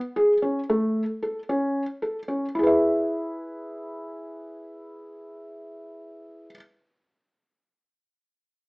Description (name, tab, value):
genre	contemporary instrumental, contemporary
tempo	224 BPM (eighths)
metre	7/8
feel	straight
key	E major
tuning	A4 = 440 Hz
part	felt-muted upright piano	arpeggios	0.2-6.6 s	A3 to E5	-24 LUFS	equal	none
room	moderate studio reverb, RT60 0.6 s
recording	AM radio sound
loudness	-22 LUFS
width	side -29 dB against mid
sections	0.0-2.6 A section; 2.6-6.3 B section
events	none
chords	0.0 G#sus4; 0.7 A; 2.6 E